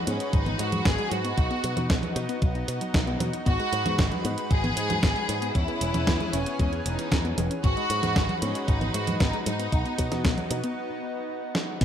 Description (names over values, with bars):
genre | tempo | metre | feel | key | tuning
italo disco | 115 BPM | 4/4 | straight | G# minor | A4 = 442 Hz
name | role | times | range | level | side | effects
warm symphonic violin section | melody | 0.0-11.8 s | C#4 to G#4 | -30 LUFS | equal | ping-pong delay
lush unison pad | sustained chords | 0.0-11.8 s | E3 to B4 | -33 LUFS | equal | chorus
wide unison pluck | arpeggios | 0.1-11.8 s | F#3 to D#4 | -34 LUFS | left 2 dB | cassette tape, digital delay
picked electric bass with an envelope filter | bass | 0.1-11.8 s | E1 to B2 | -31 LUFS | equal | none
clean 12-bit digital drum machine | drums | 0.1-11.8 s | congas, crash cymbal, hi-hat, snare drum | -29 LUFS | right 1 dB | studio ambience, gated reverb
electronic kick drum | drums | 0.3-11.8 s | none | -25 LUFS | equal | studio ambience
room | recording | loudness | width
light reverb | bright 1980s-style digital production | -24 LUFS | side -9 dB against mid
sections
0.0-11.8 A section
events
break 10.8-11.8; drum fill 11.6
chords
0.0 G#m7; 1.4 B; 3.5 G#m7; 5.6 E6; 7.6 G#m7; 9.7 B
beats
0.33 0.85 | 1.38 1.90 2.42 2.94 | 3.46 3.99 4.51 5.03 | 5.55 6.07 6.59 7.12 | 7.64 8.16 8.68 9.20 | 9.72 10.25 10.77 11.29 | 11.81